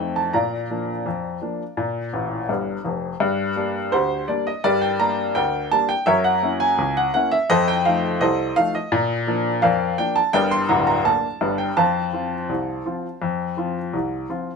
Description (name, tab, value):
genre	ragtime piano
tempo	84 BPM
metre	2/4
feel	straight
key	Bb major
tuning	A4 = 439 Hz
part	warm baby grand piano	solo	0.0-14.5 s	D1 to C6	-19 LUFS	equal	none
room	moderate studio reverb, RT60 0.6 s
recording	band playing live in one room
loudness	-19 LUFS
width	side -5 dB against mid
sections	0.0-3.2 A section; 3.2-14.6 A section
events	grand piano fill 2.1-3.2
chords	0.3 Bb; 3.2 Gm; 6.1 Gb7; 7.5 F7; 8.9 Bb; 10.3 Gm; 11.8 F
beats	| 0.34 1.06 | 1.77 2.49 | 3.21 3.93 | 4.64 5.36 | 6.07 6.78 | 7.50 8.21 | 8.92 9.63 | 10.34 11.05 | 11.78 12.50 | 13.22 13.94